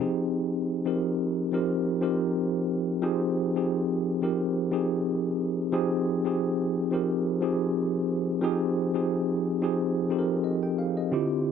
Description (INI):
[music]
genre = R&B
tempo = 89 BPM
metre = 4/4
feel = swing 55% on 16ths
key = unclear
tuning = A4 = 439 Hz
[part]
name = tine electric piano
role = solo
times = 0.0-11.5 s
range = D3 to G5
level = -25 LUFS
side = equal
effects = medium stereo tremolo
[sound]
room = digital ambience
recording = dry, close 1970s-style studio recording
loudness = -25 LUFS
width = side -7 dB against mid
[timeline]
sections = 0.0-11.1 A section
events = none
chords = 0.0 Fm9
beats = | 0.33 1.00 1.68 2.35 | 3.02 3.70 4.37 5.05 | 5.72 6.39 7.07 7.74 | 8.42 9.09 9.77 10.44 | 11.11